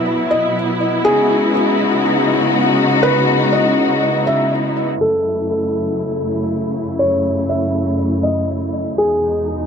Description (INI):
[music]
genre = hip hop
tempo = 121 BPM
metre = 4/4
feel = half-time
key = unclear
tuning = A4 = 440 Hz
[part]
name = felt-muted upright piano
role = melody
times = 0.0-9.4 s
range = G#4 to E5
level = -19 LUFS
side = equal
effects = digital delay
[part]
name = dark symphonic string section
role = sustained chords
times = 0.0-9.7 s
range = E2 to F#4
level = -16 LUFS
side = left 1 dB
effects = none
[sound]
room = moderate huge ambient reverb, RT60 7.9 s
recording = dark, warm production, low-pass filter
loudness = -14 LUFS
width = side -7 dB against mid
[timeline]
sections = 0.0-5.0 A section; 5.0-9.7 B section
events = none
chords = 0.0 Bsus4; 1.0 C#m11; 5.0 F#m7; 9.0 Emaj7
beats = 0.06 0.55 | 1.05 1.54 2.04 2.54 | 3.03 3.53 4.02 4.52 | 5.02 5.51 6.01 6.50 | 7.00 7.50 7.99 8.49 | 8.98 9.48